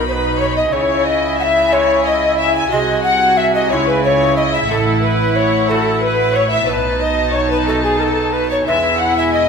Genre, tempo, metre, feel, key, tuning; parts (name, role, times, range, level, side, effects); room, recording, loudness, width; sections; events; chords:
classical, baroque-style concerto movement with solo episodes; 60 BPM (dotted quarters); 6/8; straight; A4 = 440 Hz
alto recorder; melody; 0.0-9.5 s; G#4 to G#5; -17 LUFS; left 1 dB
warm studio violin section; melody; 0.0-9.5 s; F#5 to B5; -26 LUFS; left 6 dB
warm symphonic violin section; second line; 0.0-9.5 s; G#4 to G#5; -19 LUFS; left 4 dB
lute; accompaniment; 0.0-9.5 s; E2 to G#4; -26 LUFS; equal
rich chamber viola section; accompaniment; 0.0-9.5 s; D#4 to F#4; -21 LUFS; right 1 dB
rich chamber cello section; bass; 0.0-9.5 s; E2 to C#3; -24 LUFS; right 4 dB
rich studio double bass section; bass; 0.0-9.5 s; E1 to C#2; -24 LUFS; right 3 dB
wet recital hall reverb, RT60 1.5 s; minimal, uncompressed stereo recording; -13 LUFS; side -6 dB against mid
0.0-9.5 A section
0.0 B; 0.7 C#m; 2.7 G#7/B#; 3.7 C#m; 4.7 F#m7/A; 6.7 B7; 8.7 E